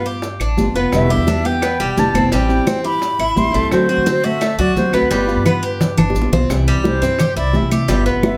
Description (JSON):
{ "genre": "latin, Cuban son and guajira", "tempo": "172 BPM", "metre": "4/4", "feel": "straight", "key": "C major", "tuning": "A4 = 440 Hz", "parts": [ { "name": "silver concert flute", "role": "melody", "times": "0.0-8.4 s", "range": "B4 to C6", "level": "-23 LUFS", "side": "equal", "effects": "plate reverb, tape echo" }, { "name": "nylon-string guitar", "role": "accompaniment", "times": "0.0-8.4 s", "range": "B2 to F#4", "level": "-24 LUFS", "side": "equal", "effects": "none" }, { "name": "Cuban tres", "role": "arpeggios", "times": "0.0-8.4 s", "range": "G3 to G4", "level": "-24 LUFS", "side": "equal", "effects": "none" }, { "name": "upright bass", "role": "bass", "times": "0.0-8.4 s", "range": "E1 to D3", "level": "-23 LUFS", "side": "equal", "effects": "none" }, { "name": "maracas", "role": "percussion", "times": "0.1-8.4 s", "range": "none", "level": "-39 LUFS", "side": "equal", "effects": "none" }, { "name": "bongos", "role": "percussion", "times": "0.2-8.4 s", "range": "none", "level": "-28 LUFS", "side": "equal", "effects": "none" }, { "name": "congas", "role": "percussion", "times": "0.2-8.4 s", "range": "none", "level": "-22 LUFS", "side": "equal", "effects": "none" }, { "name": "claves", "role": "percussion", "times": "0.4-8.4 s", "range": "none", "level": "-35 LUFS", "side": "equal", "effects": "none" }, { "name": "nylon-string guitar", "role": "second line", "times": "0.9-6.2 s", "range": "D3 to E4", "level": "-26 LUFS", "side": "equal", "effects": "none" } ], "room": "wet studio reverb, RT60 0.5 s", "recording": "heard from further back in the room", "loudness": "-16 LUFS", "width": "mono", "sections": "0.0-6.5 A section; 6.5-8.4 B section", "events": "drum fill 5.1-6.5; flute solo 6.5-8.4", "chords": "0.0 G7; 0.9 Em7; 2.3 Am7; 3.7 D7; 5.1 G7; 6.5 C", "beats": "0.23 0.58 | 0.93 1.27 1.62 1.97 | 2.32 2.67 3.02 3.37 | 3.72 4.07 4.41 4.76 | 5.11 5.46 5.81 6.15 | 6.50 6.85 7.19 7.54 | 7.88 8.23" }